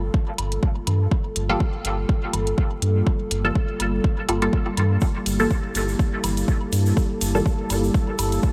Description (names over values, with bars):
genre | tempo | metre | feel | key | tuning
dub techno | 123 BPM | 4/4 | swing 55% on 16ths | G dorian | A4 = 440 Hz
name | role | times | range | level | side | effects
dark analog pad | sustained chords | 0.0-8.5 s | G3 to A4 | -30 LUFS | equal | chorus, sidechain pumping
round analog bass | bass | 0.0-8.4 s | G1 to G2 | -25 LUFS | equal | sidechain pumping
electronic kick drum | drums | 0.1-8.5 s | none | -24 LUFS | equal | overdrive
electronic hi-hat | drums | 0.4-8.4 s | none | -30 LUFS | equal | overdrive
woodblock and congas | percussion | 0.4-8.3 s | none | -38 LUFS | equal | sidechain pumping on perc, dub echo
filtered dub chord stab | stabs | 1.5-7.5 s | G3 to A4 | -30 LUFS | equal | phaser, vintage 12-bit sampler grit, sidechain pumping, dub echo
tube shaker | percussion | 5.0-8.5 s | none | -37 LUFS | equal | none
bubbling stepped-filter texture | texture | 5.0-8.5 s | A4 | -37 LUFS | equal | chorus, built-in reverb, sidechain pumping
room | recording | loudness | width
light reverb, digital ambience | vinyl crackle | -22 LUFS | mono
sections
0.0-8.5 A section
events
none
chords
0.0 Gm9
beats
0.14 0.63 | 1.12 1.60 2.09 2.58 | 3.07 3.56 4.04 4.53 | 5.02 5.51 5.99 6.48 | 6.97 7.46 7.95 8.43